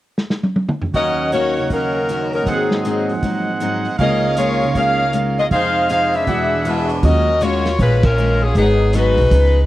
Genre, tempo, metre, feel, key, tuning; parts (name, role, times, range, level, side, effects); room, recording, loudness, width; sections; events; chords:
jazz, big band swing; 158 BPM; 4/4; swing 64% on 8ths; Eb minor; A4 = 440 Hz
vintage drum kit; drums; 0.2-9.4 s; crash cymbal, hi-hat, kick drum, snare drum, toms; -20 LUFS; equal
picked steel-string acoustic guitar; accompaniment; 0.9-9.6 s; Ab2 to Ab4; -25 LUFS; left 4 dB
warm concert grand piano; accompaniment; 0.9-7.3 s; Db2 to G5; -23 LUFS; right 4 dB
clear trumpet section; stabs; 0.9-7.1 s; G#4 to D6; -23 LUFS; right 3 dB
warm saxophone section; melody; 1.0-9.7 s; Gb3 to F5; -17 LUFS; left 2 dB
upright bass; bass; 7.0-9.7 s; Ab1 to Eb2; -15 LUFS; equal
little or no reverb; dry, close 1970s-style studio recording; -14 LUFS; side -15 dB against mid
0.9-7.0 A section; 7.0-9.7 B section
drum fill 0.2-0.9; band accent 8.0
0.0 N.C.; 0.9 Ebm7; 2.5 Ab7; 4.0 Db6; 5.5 Fm7; 6.3 E9; 7.0 Ebm11; 8.6 Abm7